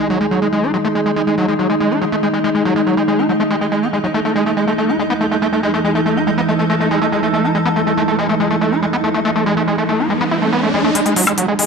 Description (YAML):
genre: psychedelic trance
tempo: 141 BPM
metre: 4/4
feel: straight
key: unclear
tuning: A4 = 443 Hz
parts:
  - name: pulsing gated texture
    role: sustained chords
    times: 0.0-11.7 s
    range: G#3 to D#4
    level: -20 LUFS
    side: right 2 dB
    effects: chorus, built-in reverb
  - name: screaming distorted acid line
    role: riff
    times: 0.0-11.7 s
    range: F#3 to E4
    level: -17 LUFS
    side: equal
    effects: distortion, chorus, auto-pan, cassette tape, tape echo
  - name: deep dark ambient pad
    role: texture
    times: 0.0-11.7 s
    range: E3 to E6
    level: -20 LUFS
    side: equal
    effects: chorus, built-in reverb
  - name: riser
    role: sound effects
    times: 9.1-11.7 s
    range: none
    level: -23 LUFS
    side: equal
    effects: none
  - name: electronic hi-hat and woodblock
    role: drums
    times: 11.0-11.7 s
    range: none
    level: -17 LUFS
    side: left 3 dB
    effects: low-pass filter on snare, low-pass filter on hats, low-pass filter on perc
room: moderate plate reverb, RT60 1.2 s, digital ambience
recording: none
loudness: -14 LUFS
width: side -5 dB against mid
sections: 0.0-11.0 A section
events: riser 9.1-11.0, 11.0-11.7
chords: 0.0 G#5; 4.1 A5; 11.0 G#5